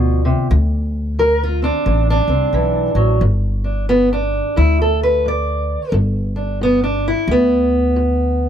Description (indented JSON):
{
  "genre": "acoustic country blues, solo or duo",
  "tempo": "89 BPM",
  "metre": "4/4",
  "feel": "swing 62% on 8ths",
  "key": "G major",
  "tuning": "A4 = 440 Hz",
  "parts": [
    { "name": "fingerpicked steel-string acoustic guitar", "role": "melody", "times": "0.0-8.5 s", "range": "G2 to D5", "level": "-16 LUFS", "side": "right 1 dB", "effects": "plate reverb" },
    { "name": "upright bass", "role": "bass", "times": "0.0-8.5 s", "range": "G1 to D2", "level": "-18 LUFS", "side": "equal", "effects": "none" }
  ],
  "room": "light reverb",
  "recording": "none",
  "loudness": "-14 LUFS",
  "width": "side -9 dB against mid",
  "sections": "0.0-3.2 A section; 3.2-8.5 B section",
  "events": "steel-string acoustic guitar solo 3.2-8.5",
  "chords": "0.0 G7 (rootless); 0.5 D7; 3.2 G"
}